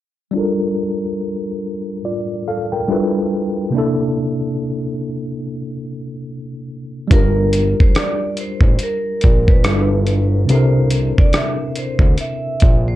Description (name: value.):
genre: lo-fi hip hop.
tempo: 71 BPM.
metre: 4/4.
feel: swing 59% on 16ths.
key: G dorian.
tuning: A4 = 440 Hz.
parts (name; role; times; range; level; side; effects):
tine electric piano; accompaniment; 0.3-13.0 s; C3 to G5; -20 LUFS; left 1 dB; overdrive, fast stereo tremolo, cassette tape, low-pass filter.
vibraphone with hard mallets; melody; 7.1-13.0 s; Bb4 to E5; -23 LUFS; right 1 dB; low-pass filter, analog delay.
fat analog bass; bass; 7.1-13.0 s; G1 to D2; -16 LUFS; equal; none.
dusty soul sampler-style drum kit; drums; 7.1-12.8 s; hi-hat, kick drum, rim click; -14 LUFS; equal; none.
room: light reverb.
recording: dark, warm production.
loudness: -15 LUFS.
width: side -14 dB against mid.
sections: 0.3-7.1 A section; 7.1-13.0 B section.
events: filter sweep on tine electric piano 0.3-7.1.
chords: 0.3 Gm7; 2.9 G13; 3.7 C13; 7.1 Gm7; 9.6 G13; 10.5 C13.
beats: | 0.35 1.19 2.04 2.88 | 3.73 4.57 5.42 6.26 | 7.11 7.95 8.80 9.64 | 10.49 11.33 12.18.